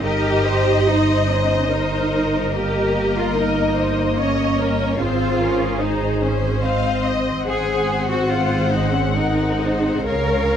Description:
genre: classical, slow romantic movement for string orchestra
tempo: 72 BPM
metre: 3/4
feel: rubato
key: Ab major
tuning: A4 = 440 Hz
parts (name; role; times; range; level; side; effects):
- dark symphonic violin section; melody; 0.0-10.6 s; C5 to Gb5; -27 LUFS; left 6 dB; none
- warm symphonic violin section; second line; 0.0-10.6 s; Bb4 to F5; -26 LUFS; left 4 dB; none
- warm symphonic viola section; accompaniment; 0.0-10.6 s; Bb3 to Db5; -23 LUFS; left 2 dB; none
- dark symphonic cello section; bass; 0.0-10.6 s; Db4 to Bb4; -22 LUFS; right 2 dB; none
- rich symphonic double bass section; bass; 0.0-10.6 s; G1 to Db2; -23 LUFS; right 2 dB; none
room: light reverb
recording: none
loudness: -17 LUFS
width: side -9 dB against mid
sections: 0.0-10.6 A section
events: none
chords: 0.0 Eb/G; 2.5 Eb7/G; 5.0 Ab; 7.5 Ab7; 10.1 Db6

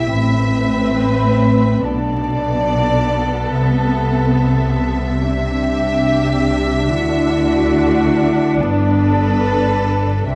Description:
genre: cinematic, emotional film score for orchestra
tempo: 71 BPM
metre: 4/4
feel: rubato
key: unclear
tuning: A4 = 442 Hz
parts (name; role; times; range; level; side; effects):
- clear studio violin section; melody; 0.0-10.3 s; B4 to E5; -27 LUFS; equal; none
- dark clarinet; second line; 0.0-10.3 s; B3 to E4; -24 LUFS; equal; none
- mellow concert flute; second line; 0.0-10.3 s; E5 to B5; -27 LUFS; equal; none
- rich studio violin section; second line; 0.0-10.3 s; F#4 to B4; -27 LUFS; equal; none
- rich studio viola section; accompaniment; 0.0-10.3 s; B3 to D4; -25 LUFS; equal; none
- rich studio cello section; bass; 0.0-10.3 s; G2 to D3; -22 LUFS; equal; none
- rich studio double bass section; bass; 0.0-10.3 s; G1 to D2; -24 LUFS; equal; none
room: wet recital hall reverb, RT60 1.7 s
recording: dark, warm production, vinyl crackle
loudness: -16 LUFS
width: mono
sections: 0.0-10.3 A section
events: none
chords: 0.1 Amadd9; 1.8 Bm7; 3.5 Amadd9/C; 5.2 Cadd9; 6.9 Dadd9; 8.6 Gadd9

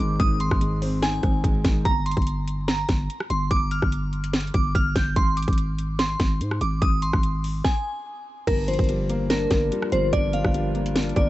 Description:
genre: hip hop, trap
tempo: 145 BPM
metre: 4/4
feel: half-time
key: G phrygian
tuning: A4 = 440 Hz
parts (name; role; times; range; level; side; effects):
- glassy synth bell; melody; 0.0-11.3 s; Bb4 to G6; -27 LUFS; equal; chorus, tape echo
- felt-muted upright piano; accompaniment; 0.0-1.9, 8.5-11.3 s; G2 to Eb4; -29 LUFS; left 1 dB; none
- growling 808-style bass; bass; 0.0-11.3 s; G1 to Ab2; -25 LUFS; equal; none
- trap drum kit; drums; 0.2-11.3 s; crash cymbal, hi-hat, kick drum, rim click, snare drum; -23 LUFS; equal; none
- warbly tape-like pad; sustained chords; 9.5-11.3 s; G3 to Bb4; -34 LUFS; left 4 dB; chorus, built-in reverb
room: little or no reverb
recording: vinyl crackle, nothing above 8.0 kHz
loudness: -21 LUFS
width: side -16 dB against mid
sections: 0.0-8.5 A section; 8.5-11.3 B section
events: stop 7.6-8.5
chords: 0.0 Ab; 1.9 Gm7; 5.2 Ab; 8.5 Gm7

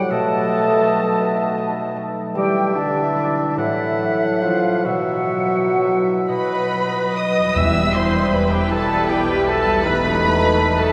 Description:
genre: classical, slow romantic movement for symphony orchestra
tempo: 40-55 BPM (dotted quarters)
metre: 6/8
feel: rubato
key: E minor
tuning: A4 = 440 Hz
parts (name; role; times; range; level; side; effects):
- clear oboe; second line; 0.0-10.9 s; B4 to F#5; -30 LUFS; equal; none
- dark clarinet; second line; 0.0-10.9 s; D4 to A4; -27 LUFS; equal; none
- mellow flute section; second line; 0.0-10.9 s; G4 to A5; -27 LUFS; equal; none
- warm bassoon; accompaniment; 0.0-10.9 s; A2 to A3; -28 LUFS; equal; none
- mellow French horn section; sustained chords; 0.0-10.9 s; D3 to E4; -27 LUFS; equal; none
- concert harp; arpeggios; 0.0-10.9 s; E2 to C5; -30 LUFS; equal; none
- muted symphonic violin section; melody; 6.3-10.9 s; G5 to E6; -26 LUFS; equal; none
- muted symphonic violin section; second line; 6.3-10.9 s; G4 to E5; -32 LUFS; equal; none
- clear trumpet section; stabs; 6.3-10.9 s; G4 to E5; -27 LUFS; equal; none
- muted symphonic viola section; accompaniment; 7.6-10.9 s; D#3 to E4; -31 LUFS; equal; none
- muted studio double bass section; bass; 7.6-10.8 s; E1 to B1; -28 LUFS; equal; none
- muted symphonic cello section; bass; 7.6-10.8 s; E2 to B2; -29 LUFS; equal; none
- timpani; percussion; 7.6-8.7 s; E2; -31 LUFS; equal; none
room: wet cathedral reverb, RT60 6.3 s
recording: recorded in a church or concert hall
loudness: -19 LUFS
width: mono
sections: 0.0-7.6 A section; 7.6-10.9 B section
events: none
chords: 0.1 B7; 2.4 E5; 3.6 F#dim/A; 4.9 Bsus4; 6.3 B; 7.6 Em; 9.9 B7/E

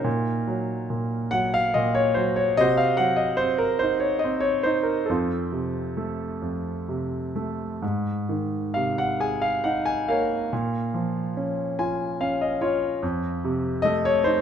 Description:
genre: classical, lyrical solo piano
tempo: 64-74 BPM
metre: 3/4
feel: rubato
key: Bb minor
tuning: A4 = 439 Hz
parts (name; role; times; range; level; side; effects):
- clear concert grand piano; solo; 0.0-14.4 s; F2 to Ab5; -22 LUFS; equal; none
room: moderate recital hall reverb, RT60 1.6 s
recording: minimal, uncompressed stereo recording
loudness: -22 LUFS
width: side -8 dB against mid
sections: 0.0-14.4 A section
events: grand piano fill 11.4-13.0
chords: 0.1 Ebm/Bb; 2.6 Cdim; 5.1 F; 7.8 Abadd9; 10.5 Bbm; 13.0 F7

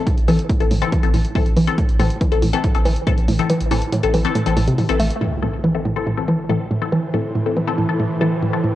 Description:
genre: driving peak-time techno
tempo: 140 BPM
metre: 4/4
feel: straight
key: A minor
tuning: A4 = 440 Hz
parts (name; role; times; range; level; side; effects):
- filtered dub chord stab; stabs; 0.0-8.6 s; E3 to A4; -23 LUFS; left 6 dB; phaser, sidechain pumping, cassette tape, analog delay
- woody wave-folded pluck; riff; 0.1-8.7 s; A2 to A3; -21 LUFS; right 1 dB; chorus, overdrive, sidechain pumping, cassette tape, analog delay
- electronic kick drum; drums; 0.1-3.2 s; none; -19 LUFS; equal; overdrive, cassette tape
- punchy analog drum machine; drums; 0.1-8.7 s; hi-hat, toms; -28 LUFS; equal; cassette tape
- saturated sub bass; bass; 0.2-5.1 s; A1; -21 LUFS; equal; tube saturation, sidechain pumping, low-pass filter
- swarming drone; drone; 6.4-8.8 s; A2 to E3; -26 LUFS; right 2 dB; built-in reverb, sidechain pumping, cassette tape
- impact; sound effects; 5.2-6.9 s; none; -30 LUFS; equal; none
- granular cloud pad; texture; 6.4-8.8 s; E4 to C5; -29 LUFS; equal; built-in reverb, sidechain pumping, cassette tape
room: moderate spring reverb, RT60 1.7 s, digital ambience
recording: home recording on cassette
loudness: -16 LUFS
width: side -14 dB against mid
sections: 0.0-5.2 A section; 5.2-8.8 B section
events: filter sweep on synth arpeggio sound 0.0-5.2; kick drops out 3.5-5.2; impact 5.2-6.9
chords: 0.0 Am

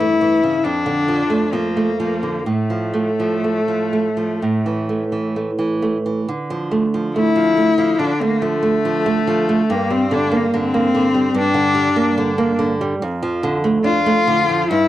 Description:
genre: romantic duo for cello and classical guitar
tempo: 62-74 BPM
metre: 4/4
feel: rubato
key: D minor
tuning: A4 = 439 Hz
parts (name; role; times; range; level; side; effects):
- rich cello; melody; 0.0-14.9 s; A3 to F4; -18 LUFS; left 3 dB; slapback echo
- nylon-string guitar; accompaniment; 0.0-14.9 s; F2 to D4; -18 LUFS; right 2 dB; none
room: light reverb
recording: dry, close 1970s-style studio recording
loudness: -16 LUFS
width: side -13 dB against mid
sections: 0.0-6.3 A section; 6.3-14.9 A section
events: none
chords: 0.0 A7/G; 0.7 Dm/F; 2.5 F/A; 4.4 A5; 6.3 Dm; 9.7 Gm; 13.0 Dm/F

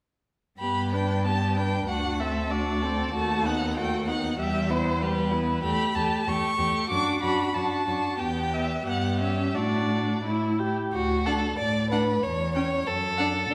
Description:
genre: quick classical-period movement for string quartet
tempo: 94 BPM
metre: 2/4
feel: rubato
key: G major, D major from 5.6 s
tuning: A4 = 438 Hz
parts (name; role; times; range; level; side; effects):
- rich violin; melody; 0.6-13.3 s; B4 to D6; -32 LUFS; equal; none
- rich violin; second line; 0.6-13.5 s; D4 to D5; -32 LUFS; equal; none
- warm viola; accompaniment; 0.6-13.3 s; G3 to G4; -33 LUFS; equal; none
- rich cello; bass; 0.6-13.5 s; D2 to B2; -31 LUFS; equal; none
room: wet recital hall reverb, RT60 1.4 s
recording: recorded in a church or concert hall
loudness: -26 LUFS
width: mono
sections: 0.6-10.9 A section; 10.9-13.5 B section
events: none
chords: 0.6 G; 1.9 D7; 3.1 B7/D#; 4.4 Em; 5.6 A7/E; 6.9 D/F#; 8.2 Em; 8.9 Em/G; 9.5 D/A; 10.2 A5; 10.9 D; 12.2 C#dim/E; 12.9 D/F#

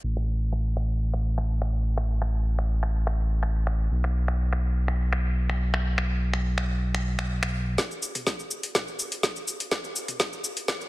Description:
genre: afro house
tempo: 124 BPM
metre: 4/4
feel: straight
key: unclear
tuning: A4 = 439 Hz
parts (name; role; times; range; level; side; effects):
- smooth gliding synth bass; bass; 0.0-7.8 s; A1 to B1; -24 LUFS; equal; sidechain pumping
- afro-pop drum kit; drums; 0.2-10.9 s; finger snaps, hi-hat, shaker, snare drum, toms; -30 LUFS; equal; high-pass filter on hats, low-pass filter on hats, studio reverb, high-pass filter on perc, low-pass filter on perc, high-pass filter on toms, low-pass filter on toms, soft clipping on snare, high-pass filter on snare, low-pass filter on snare
- electronic kick drum; drums; 7.8-10.8 s; none; -36 LUFS; equal; high-pass filter on kick, studio reverb
room: digital ambience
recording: dense, heavily limited modern master, low-pass filter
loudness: -24 LUFS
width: side -19 dB against mid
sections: 0.0-7.8 A section; 7.8-10.9 B section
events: filter sweep on drum 0.0-7.8; filter sweep 0.0-7.8; build-up 7.8-10.9; drum fill 7.8-10.9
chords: none

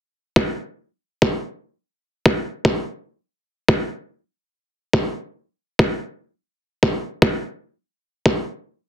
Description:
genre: glitch hop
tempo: 105 BPM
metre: 4/4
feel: swing 63% on 16ths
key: none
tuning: none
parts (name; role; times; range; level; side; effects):
- electronic kick drum; drums; 0.4-8.3 s; none; -17 LUFS; equal; high-pass filter on kick, high-pass filter on room
room: little or no reverb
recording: dense, heavily limited modern master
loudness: -19 LUFS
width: side -10 dB against mid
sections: 0.4-8.9 A section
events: none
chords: none

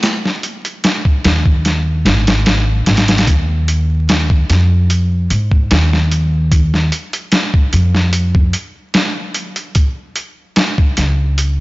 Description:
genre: trip hop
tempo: 74 BPM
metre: 4/4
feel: straight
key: unclear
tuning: A4 = 444 Hz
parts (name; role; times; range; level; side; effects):
- boom bap sampler-style drum kit; drums; 0.0-11.6 s; hi-hat, kick drum, snare drum; -14 LUFS; equal; studio reverb
- upright bass; bass; 1.2-11.6 s; Ab1 to Ab2; -13 LUFS; equal; none
room: light reverb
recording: blown-out, overdriven recording, vinyl crackle, overdrive, nothing above 7.6 kHz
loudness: -12 LUFS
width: side -21 dB against mid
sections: 0.0-11.6 A section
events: none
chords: none

